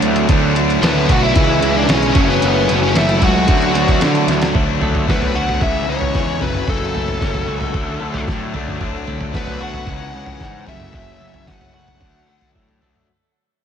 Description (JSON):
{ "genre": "quiet-loud alternative rock", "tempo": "113 BPM", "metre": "4/4", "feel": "straight", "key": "unclear", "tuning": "A4 = 440 Hz", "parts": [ { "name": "distorted electric guitar", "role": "riff", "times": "0.0-13.1 s", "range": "F#2 to D4", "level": "-21 LUFS", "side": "left 11 dB", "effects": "distortion, slapback echo" }, { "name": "overdriven semi-hollow guitar", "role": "riff", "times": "0.0-4.5 s", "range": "F#2 to D4", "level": "-19 LUFS", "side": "right 12 dB", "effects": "slapback echo" }, { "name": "fuzz picked electric bass", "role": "bass", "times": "0.0-13.1 s", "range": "F#1 to D3", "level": "-22 LUFS", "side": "equal", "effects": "overdrive" }, { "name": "lo-fi sampler-style drum kit", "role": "drums", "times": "0.0-13.1 s", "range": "hi-hat, kick drum, snare drum, toms", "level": "-20 LUFS", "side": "equal", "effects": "none" }, { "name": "bluesy overdriven lead guitar", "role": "melody", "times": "0.8-12.5 s", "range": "B3 to F#5", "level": "-21 LUFS", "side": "left 1 dB", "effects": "distortion, slapback echo, tape echo" }, { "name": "twelve-string electric guitar", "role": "arpeggios", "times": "4.6-13.1 s", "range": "F#2 to F#4", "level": "-29 LUFS", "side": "right 6 dB", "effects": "harmonic tremolo, tape echo" } ], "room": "moderate lush hall reverb, RT60 2.9 s", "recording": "big arena sound", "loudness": "-14 LUFS", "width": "side -8 dB against mid", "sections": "0.0-4.5 A section; 4.5-13.1 B section", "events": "drum fill 4.3; fade-out 4.5-13.1", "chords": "0.3 D6; 1.4 C#m; 2.2 F#m7; 3.5 D; 4.5 D6; 5.6 C#m; 6.4 F#m; 7.7 D; 8.8 D6; 9.9 C#m; 10.7 F#m7; 12.0 D", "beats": "| 0.29 0.82 1.36 1.89 | 2.42 2.95 3.48 4.01 | 4.54 5.08 5.61 6.14 | 6.67 7.21 7.74 8.27 | 8.80 9.34 9.87 10.40 | 10.94 11.47 12.01 12.54" }